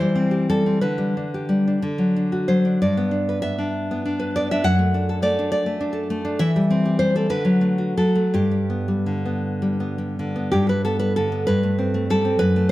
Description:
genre	romantic piece for solo classical guitar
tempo	53-69 BPM (dotted quarters)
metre	6/8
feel	rubato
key	G major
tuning	A4 = 439 Hz
part	nylon-string guitar	solo	0.0-12.7 s	F#2 to F#5	-19 LUFS	equal	slapback echo
room	moderate recital hall reverb, RT60 1.5 s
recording	close, detailed microphones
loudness	-19 LUFS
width	side -16 dB against mid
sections	0.0-10.5 A section; 10.5-12.7 B section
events	none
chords	0.0 C/E; 0.8 G/D; 1.8 D; 2.8 G; 4.6 D/F#; 6.4 C/E; 7.3 D; 8.3 G; 11.5 Am7/G

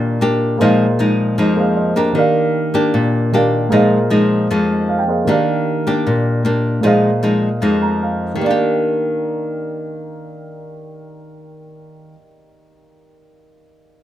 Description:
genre	bossa nova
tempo	154 BPM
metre	4/4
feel	straight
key	Eb major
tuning	A4 = 441 Hz
part	nylon-string guitar	accompaniment	0.0-12.3 s	F2 to G4	-16 LUFS	left 1 dB	none
part	warm concert grand piano	accompaniment	0.0-14.0 s	Eb3 to Bb5	-19 LUFS	right 2 dB	none
room	light reverb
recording	none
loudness	-14 LUFS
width	side -12 dB against mid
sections	0.0-8.4 A section; 8.4-11.5 B section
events	grand piano fill 1.6-2.2, 4.7-5.3, 7.6-8.4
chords	0.0 Ebmaj7; 0.6 Bb7sus4; 2.2 Ebmaj7; 3.7 Bb7sus4; 5.3 Ebmaj7; 6.8 Bb7sus4; 8.4 Ebmaj7

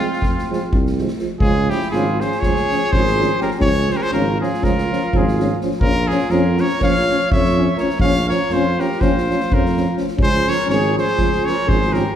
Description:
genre	balkan folk, Balkan brass band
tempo	246 BPM (eighths)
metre	9/8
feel	straight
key	unclear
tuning	A4 = 442 Hz
part	bright trumpet	melody	0.0-12.2 s	F4 to F5	-22 LUFS	left 1 dB	none
part	mellow flugelhorn	second line	0.0-12.2 s	C4 to Db5	-24 LUFS	right 2 dB	none
part	mellow euphonium	accompaniment	0.0-12.2 s	F3	-24 LUFS	right 4 dB	none
part	warm euphonium	accompaniment	0.0-12.2 s	Ab3 to Db4	-25 LUFS	left 4 dB	none
part	street-band drum kit	percussion	0.0-12.0 s	kick drum, snare drum	-22 LUFS	equal	none
part	mellow tuba	bass	0.2-12.0 s	Ab1 to F2	-22 LUFS	equal	none
room	wet recital hall reverb, RT60 1.5 s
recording	heard from further back in the room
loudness	-15 LUFS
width	side -10 dB against mid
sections	0.0-1.4 A section; 1.4-12.2 B section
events	none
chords	0.0 Fm; 1.4 Db; 5.8 Bbm; 10.2 Db

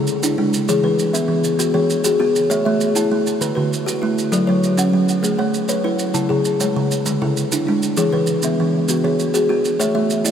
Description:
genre	southern african traditional, mbira-style interlocking cycle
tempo	132 BPM (dotted quarters)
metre	12/8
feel	straight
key	A major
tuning	A4 = 440 Hz
part	kalimba	arpeggios	0.0-10.3 s	C#3 to F#5	-18 LUFS	left 3 dB	none
part	kalimba	arpeggios	0.0-10.3 s	C#3 to A5	-20 LUFS	right 3 dB	diffuse ambient delay
part	maracas	percussion	0.1-10.3 s	none	-28 LUFS	right 5 dB	none
room	wet huge ambient reverb, RT60 7.9 s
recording	dreamy mix soaked in reverb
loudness	-16 LUFS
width	side -8 dB against mid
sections	0.0-9.8 A section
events	none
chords	0.0 C#m; 0.7 E; 2.5 A; 3.4 D; 4.3 F#m; 5.2 A; 6.2 C#m; 8.0 E; 9.8 A

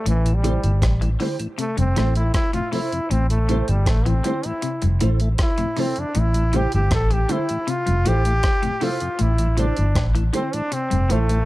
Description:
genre	roots reggae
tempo	79 BPM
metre	4/4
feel	straight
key	A minor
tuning	A4 = 444 Hz
part	brilliant trombone	melody	0.0-11.5 s	E3 to A4	-25 LUFS	equal	dub echo
part	electric guitar at the edge of break-up	arpeggios	0.1-11.3 s	G2 to E3	-28 LUFS	left 5 dB	analog chorus
part	vintage muted fingered electric bass	bass	0.1-11.4 s	F1 to A1	-19 LUFS	equal	none
part	dusty soul sampler-style drum kit	drums	0.1-11.5 s	hi-hat, kick drum, rim click	-24 LUFS	equal	overdrive
part	mellow tonewheel organ	accompaniment	0.3-11.4 s	F2 to E4	-29 LUFS	left 1 dB	slow rotary speaker
part	mellow electric guitar	accompaniment	0.4-11.3 s	E4 to C5	-30 LUFS	right 4 dB	ensemble chorus, dub echo
room	little or no reverb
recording	none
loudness	-18 LUFS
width	side -18 dB against mid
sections	0.0-11.5 A section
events	trombone solo 0.0-11.5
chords	0.1 Am7; 1.6 Fmaj7; 3.1 Am7; 4.6 Fmaj7; 6.2 Am7; 7.7 Fmaj7; 9.2 Am7; 10.7 Fmaj7

